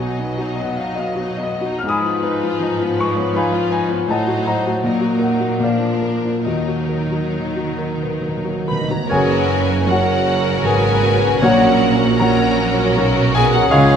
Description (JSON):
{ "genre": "classical", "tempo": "66-85 BPM", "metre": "3/4", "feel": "rubato", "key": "Eb minor, F# major from 9.1 s", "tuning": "A4 = 440 Hz", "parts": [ { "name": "clear concert grand piano", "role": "melody", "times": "0.0-14.0 s", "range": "F#1 to F6", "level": "-18 LUFS", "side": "left 2 dB", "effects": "none" }, { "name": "warm symphonic violin section", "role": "melody", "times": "0.0-14.0 s", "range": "Bb4 to Cb6", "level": "-29 LUFS", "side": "left 3 dB", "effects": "none" }, { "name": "warm symphonic violin section", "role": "second line", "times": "0.0-14.0 s", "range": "Ab3 to A#4", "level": "-26 LUFS", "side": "left 2 dB", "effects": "none" }, { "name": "rich symphonic viola section", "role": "accompaniment", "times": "0.0-14.0 s", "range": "F3 to C#4", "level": "-27 LUFS", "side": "right 1 dB", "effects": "none" }, { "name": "warm symphonic cello section", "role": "bass", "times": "0.0-14.0 s", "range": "F#2 to Eb3", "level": "-24 LUFS", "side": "right 4 dB", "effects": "none" }, { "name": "timpani", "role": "percussion", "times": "6.5-9.0 s", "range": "Eb3", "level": "-28 LUFS", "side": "right 2 dB", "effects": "none" }, { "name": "large flute ensemble", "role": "second line", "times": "8.7-14.0 s", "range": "G#4 to Eb5", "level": "-26 LUFS", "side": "left 1 dB", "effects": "none" }, { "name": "clear oboe", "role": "second line", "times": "9.1-14.0 s", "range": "C#5", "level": "-27 LUFS", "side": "right 2 dB", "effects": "none" }, { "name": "mellow clarinet", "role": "second line", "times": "9.1-14.0 s", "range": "G#4 to A#4", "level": "-27 LUFS", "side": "left 2 dB", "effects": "none" }, { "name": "warm bassoon", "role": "accompaniment", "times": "9.1-14.0 s", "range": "F#3 to G#3", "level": "-25 LUFS", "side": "right 3 dB", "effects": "none" }, { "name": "mellow French horn section", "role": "sustained chords", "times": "9.1-14.0 s", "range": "C#4 to G#4", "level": "-28 LUFS", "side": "left 1 dB", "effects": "none" }, { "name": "warm trombone section", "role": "sustained chords", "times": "9.1-14.0 s", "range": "C#3 to A#3", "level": "-28 LUFS", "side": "right 7 dB", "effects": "none" }, { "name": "warm trumpet section", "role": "stabs", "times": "9.1-14.0 s", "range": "C#5", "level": "-27 LUFS", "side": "right 6 dB", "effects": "none" }, { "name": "dark symphonic double bass section", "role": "bass", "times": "9.1-14.0 s", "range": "F#1 to C#2", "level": "-27 LUFS", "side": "right 7 dB", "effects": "none" }, { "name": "warm tuba", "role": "bass", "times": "9.1-14.0 s", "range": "F#1 to C#2", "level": "-27 LUFS", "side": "right 5 dB", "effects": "none" } ], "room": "moderate scoring stage reverb, RT60 2.1 s", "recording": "none", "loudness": "-15 LUFS", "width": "side -8 dB against mid", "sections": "0.0-9.1 A section; 9.1-14.0 B section", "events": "timpani fill 6.5-9.1", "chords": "0.0 B; 1.9 Fm7b5/Ab; 4.1 Adim7; 4.8 Ebm/Bb; 5.6 Bb; 6.5 Ebm; 9.1 F#; 11.4 F#/A#" }